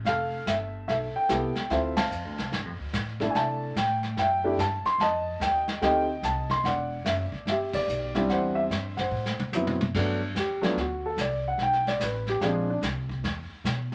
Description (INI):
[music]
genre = jazz piano trio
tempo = 146 BPM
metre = 4/4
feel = swing 64% on 8ths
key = G major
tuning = A4 = 439 Hz
[part]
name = upright bass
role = bass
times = 0.0-13.9 s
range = E1 to C3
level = -36 LUFS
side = equal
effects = none
[part]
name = warm baby grand piano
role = melody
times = 0.1-12.8 s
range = F3 to C6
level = -29 LUFS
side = equal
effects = none
[part]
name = vintage brush drum kit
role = drums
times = 0.1-13.9 s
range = brushed snare drum, crash cymbal, hi-hat, kick drum, ride cymbal, snare drum, toms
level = -34 LUFS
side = equal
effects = none
[sound]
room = moderate club reverb, RT60 0.6 s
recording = none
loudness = -28 LUFS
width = mono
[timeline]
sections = 0.0-9.9 A section; 9.9-13.9 B section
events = band accent 1.9, 7.7; drum fill 9.1-9.9; grand piano solo 9.9-13.9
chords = 0.1 Fmaj9#11; 1.7 Dm9; 2.5 Gsus2; 3.3 C69; 5.0 F9; 6.6 Em9; 8.3 Cadd9/E; 9.1 F#m7b5; 9.9 Gmaj9; 11.6 A7sus2; 12.4 Bb9; 13.2 Asus2 (rootless)